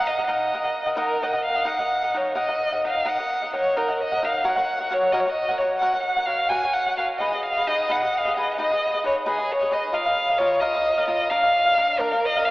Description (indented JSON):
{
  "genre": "mexican folk, mariachi",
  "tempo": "87 BPM (dotted quarters)",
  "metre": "6/8",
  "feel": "straight",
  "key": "Eb minor",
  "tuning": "A4 = 440 Hz",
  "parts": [
    { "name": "dark violin", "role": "melody", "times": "0.0-12.5 s", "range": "Ab4 to Ab5", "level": "-22 LUFS", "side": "equal", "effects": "none" },
    { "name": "cavaquinho", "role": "accompaniment", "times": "0.0-12.5 s", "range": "D4 to Gb5", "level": "-25 LUFS", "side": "equal", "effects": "none" }
  ],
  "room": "wet cathedral reverb, RT60 5.6 s",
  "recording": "in a vast, echoing space, AM radio sound",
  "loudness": "-20 LUFS",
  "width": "side -19 dB against mid",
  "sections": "0.0-1.7 A section; 1.7-12.5 B section",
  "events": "none",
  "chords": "0.0 Ebm; 4.4 Gb; 7.2 Abm; 9.9 Bbsus4; 11.3 Bb"
}